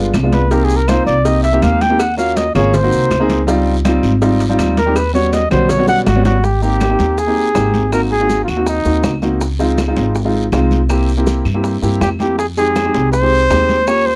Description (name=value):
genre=Afro-Cuban jazz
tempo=162 BPM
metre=4/4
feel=straight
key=Ab major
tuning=A4 = 440 Hz
part: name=warm baby grand piano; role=accompaniment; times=0.0-14.1 s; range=G3 to Ab4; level=-20 LUFS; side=equal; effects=none
part: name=upright bass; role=bass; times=0.0-14.2 s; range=G1 to G2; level=-19 LUFS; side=equal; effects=none
part: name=claves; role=percussion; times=0.1-14.1 s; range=none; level=-34 LUFS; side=equal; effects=none
part: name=congas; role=percussion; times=0.1-14.2 s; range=none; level=-24 LUFS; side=equal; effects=none
part: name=cowbell and bongos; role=percussion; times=0.1-14.1 s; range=none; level=-26 LUFS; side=equal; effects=none
part: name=guiro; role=percussion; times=0.1-14.2 s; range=none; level=-37 LUFS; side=equal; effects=none
part: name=maracas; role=percussion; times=0.1-14.1 s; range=none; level=-38 LUFS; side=equal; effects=none
part: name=breathy trumpet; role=melody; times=0.3-9.2, 12.0-14.2 s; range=Eb4 to G5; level=-18 LUFS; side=equal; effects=none
room=little or no reverb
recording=dry, close 1970s-style studio recording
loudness=-14 LUFS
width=mono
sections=0.0-6.4 A section; 6.4-14.2 B section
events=trumpet solo 0.0-6.4; drum fill 5.9-6.4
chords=0.0 G7b9; 0.5 Cm7; 2.0 Ebm9; 2.7 Ab7; 3.5 Dbmaj9#11; 5.0 Eb7alt; 6.4 Abmaj7; 7.9 Ab7; 9.4 Dbmaj7; 10.9 C7; 12.4 Fm7